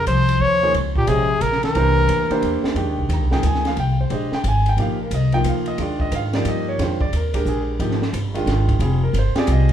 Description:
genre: modal jazz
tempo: 178 BPM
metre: 3/4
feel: swing 64% on 8ths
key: F dorian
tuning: A4 = 440 Hz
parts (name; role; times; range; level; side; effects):
- clear trumpet; melody; 0.0-2.6 s; G4 to Db5; -19 LUFS; left 1 dB; none
- mellow bass clarinet; second line; 0.0-2.6 s; Bb2 to F3; -25 LUFS; left 2 dB; none
- upright bass; bass; 0.0-9.7 s; F1 to Ab2; -20 LUFS; equal; none
- compact cocktail drum kit; drums; 0.1-9.7 s; hi-hat, kick drum, ride cymbal, snare drum; -28 LUFS; right 1 dB; none
- warm concert grand piano; accompaniment; 0.6-9.7 s; Eb3 to Bb5; -23 LUFS; right 1 dB; none
room: moderate large studio reverb, RT60 1.2 s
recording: band playing live in one room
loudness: -17 LUFS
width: side -10 dB against mid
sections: 0.0-2.8 A section; 2.8-9.7 B section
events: none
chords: 0.0 Bbm9; 1.7 C7; 2.8 Fm7; 4.8 Eb6; 6.8 Fm7; 8.8 Eb6/F

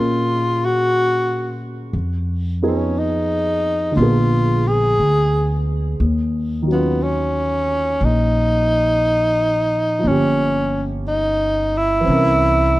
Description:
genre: jazz ballad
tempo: 59 BPM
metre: 4/4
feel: swing 68% on 8ths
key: Eb minor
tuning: A4 = 440 Hz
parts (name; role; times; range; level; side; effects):
- breathy tenor saxophone; melody; 0.0-12.8 s; Cb4 to Ab4; -18 LUFS; equal; none
- dark grand piano; accompaniment; 0.0-12.8 s; D3 to F5; -23 LUFS; right 1 dB; none
- upright bass; bass; 0.0-12.8 s; G1 to Bb2; -20 LUFS; equal; none
room: little or no reverb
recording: dry, close 1970s-style studio recording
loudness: -16 LUFS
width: side -17 dB against mid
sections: 0.0-12.8 A section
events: none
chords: 0.0 Gbmaj9; 1.9 Fm7b5; 4.0 Bb7b9; 6.0 Ebm9; 10.0 Gm7b5; 12.1 C7b9

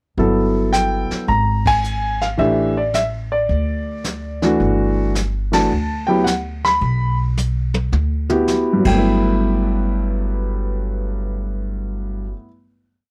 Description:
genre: jazz piano trio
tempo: 108 BPM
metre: 4/4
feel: swing 68% on 8ths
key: G major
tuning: A4 = 441 Hz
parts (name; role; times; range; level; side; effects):
- warm grand piano; melody; 0.2-12.5 s; G2 to B5; -21 LUFS; equal; none
- upright bass; bass; 0.2-12.3 s; G1 to D2; -24 LUFS; equal; none
- vintage brush drum kit; drums; 0.2-8.9 s; brushed snare drum, crash cymbal, hi-hat, kick drum, ride cymbal, snare drum, toms; -29 LUFS; equal; none
room: light reverb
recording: dry, close 1970s-style studio recording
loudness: -19 LUFS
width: mono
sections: 0.2-9.0 A section; 9.0-11.2 final hit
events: band accent 1.6, 5.4; drum fill 7.4-8.5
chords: 0.2 Gmaj13; 1.3 Fmadd11/Ab (rootless); 2.4 A7sus4; 3.5 N.C.; 4.6 Gmaj13

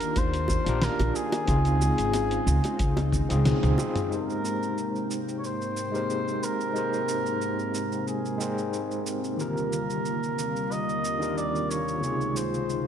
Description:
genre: sunset chillout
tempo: 91 BPM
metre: 4/4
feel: swing 53% on 16ths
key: Ab major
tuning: A4 = 440 Hz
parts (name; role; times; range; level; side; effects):
- trumpet with cup mute; melody; 0.0-12.9 s; Ab4 to Eb5; -31 LUFS; equal; tape echo
- overdriven tine electric piano; accompaniment; 0.0-12.9 s; C3 to G5; -31 LUFS; left 1 dB; medium tremolo, auto-pan, vintage 12-bit sampler grit, ping-pong delay
- lush unison pad; sustained chords; 0.0-12.9 s; Db2 to G5; -32 LUFS; left 1 dB; chorus
- dusty soul sampler-style drum kit; drums; 0.0-12.8 s; cabasa, hi-hat, snare drum, toms; -34 LUFS; equal; none
- upright bass; bass; 0.2-3.7 s; Ab1 to Eb2; -25 LUFS; equal; tube saturation
- electronic kick drum; drums; 0.2-3.3 s; none; -29 LUFS; equal; none
- bongos; percussion; 0.2-3.9 s; none; -35 LUFS; right 1 dB; none
room: moderate scoring stage reverb, RT60 1.9 s, digital ambience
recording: dark, warm production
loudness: -24 LUFS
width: side -8 dB against mid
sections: 0.0-4.1 A section; 4.1-12.9 B section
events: drum fill 3.1-4.1; band accent 3.5-3.8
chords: 0.0 Ebmaj9; 1.5 Dbmaj9; 4.1 Abmaj9; 9.4 Ebmaj9; 12.0 Dbmaj9

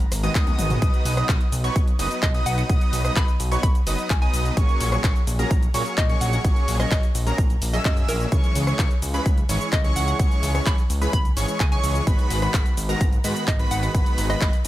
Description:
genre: EDM, festival progressive house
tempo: 128 BPM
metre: 4/4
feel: straight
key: B major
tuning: A4 = 442 Hz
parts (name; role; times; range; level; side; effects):
- fat analog bass; bass; 0.0-14.7 s; F#1 to A#2; -25 LUFS; equal; sidechain pumping
- big-room dance drum kit; drums; 0.0-14.7 s; handclaps, hi-hat, rim click, shaker, toms; -29 LUFS; left 1 dB; overdrive
- wide unison lead; arpeggios; 0.2-14.5 s; A#5 to E6; -30 LUFS; right 2 dB; wide subtle chorus, sidechain pumping, digital delay
- supersaw chords; riff; 0.2-14.5 s; D#3 to E5; -28 LUFS; equal; sidechain pumping, digital delay
- electronic kick drum; drums; 0.4-14.5 s; none; -20 LUFS; equal; overdrive
- hollow square pluck; melody; 2.2-14.5 s; A#4 to B5; -31 LUFS; equal; chorus, digital delay
room: little or no reverb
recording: none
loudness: -19 LUFS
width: side -15 dB against mid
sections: 0.0-14.7 A section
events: drum fill 0.5-0.8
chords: 0.0 G#m7; 0.8 B; 4.6 F#add9/A#; 8.3 C#m; 12.1 G#m7

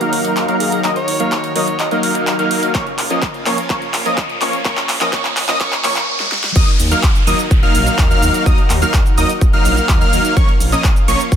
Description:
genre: EDM, festival progressive house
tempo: 126 BPM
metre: 4/4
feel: straight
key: unclear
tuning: A4 = 440 Hz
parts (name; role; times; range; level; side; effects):
- lush unison pad; sustained chords; 0.0-11.4 s; D#3 to A#4; -27 LUFS; equal; chorus, sidechain pumping
- wide unison lead; arpeggios; 0.0-11.2 s; C#6 to E#6; -21 LUFS; equal; sidechain pumping, digital delay
- supersaw chords; riff; 0.0-11.2 s; E#3 to E#5; -19 LUFS; equal; sidechain pumping, low-pass filter, digital delay
- big-room dance drum kit; drums; 0.0-11.4 s; crash cymbal, handclaps, hi-hat, shaker, snare drum; -21 LUFS; equal; none
- riser and downlifter; sound effects; 2.5-10.4 s; none; -26 LUFS; right 1 dB; none
- wide detuned saw bass; bass; 0.1-11.4 s; D#1 to A#2; -22 LUFS; equal; chorus, sidechain pumping, high-pass filter
- warm alto saxophone; melody; 0.6-2.0 s; G#4 to D#5; -24 LUFS; equal; digital delay
- electronic kick drum; drums; 2.7-11.4 s; none; -14 LUFS; equal; none
room: light reverb, digital ambience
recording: dense, heavily limited modern master, high-pass filter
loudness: -13 LUFS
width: side -9 dB against mid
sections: 0.0-6.6 A section; 6.6-11.4 B section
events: build-up 0.0-6.6; drum fill 0.0-6.1, 6.2-6.6; filter sweep on supersaw synth 0.0-6.6; filter sweep on analog synth lead 0.0-6.6; filter sweep 0.0-6.6; riser 2.5-6.6; drop 6.6-11.4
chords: 0.0 D#m; 2.7 A#m; 6.6 D#m; 10.4 A#m

